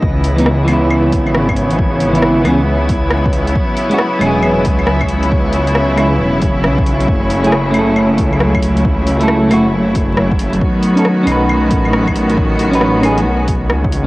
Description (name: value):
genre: future garage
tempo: 136 BPM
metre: 4/4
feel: swing 64% on 16ths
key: C# minor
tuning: A4 = 441 Hz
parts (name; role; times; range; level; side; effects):
- clean electric guitar; accompaniment; 0.0-14.1 s; E3 to B4; -16 LUFS; right 1 dB; sidechain pumping, cassette tape, tape echo
- bright symphonic string section; sustained chords; 0.0-14.1 s; C#3 to F#4; -16 LUFS; equal; sidechain pumping, cassette tape
- swelling detuned saw bass; bass; 0.0-14.1 s; E1 to C#2; -17 LUFS; equal; transformer saturation, sidechain pumping
- electronic kick drum; drums; 0.0-13.9 s; none; -17 LUFS; equal; overdrive
- drifting glass-harmonics texture; texture; 0.0-14.1 s; C#5; -27 LUFS; equal; chorus, built-in reverb, cassette tape
- deep house drum kit; drums; 0.2-14.0 s; claves, hi-hat, rim click; -20 LUFS; equal; overdrive, low-pass filter on hats, low-pass filter on snare, low-pass filter on perc
room: moderate small room reverb, RT60 0.5 s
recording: home recording on cassette, vinyl crackle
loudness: -11 LUFS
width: side -19 dB against mid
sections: 0.0-14.1 A section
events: none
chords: 0.0 C#m7; 3.6 E69; 7.1 F#m7; 10.6 B7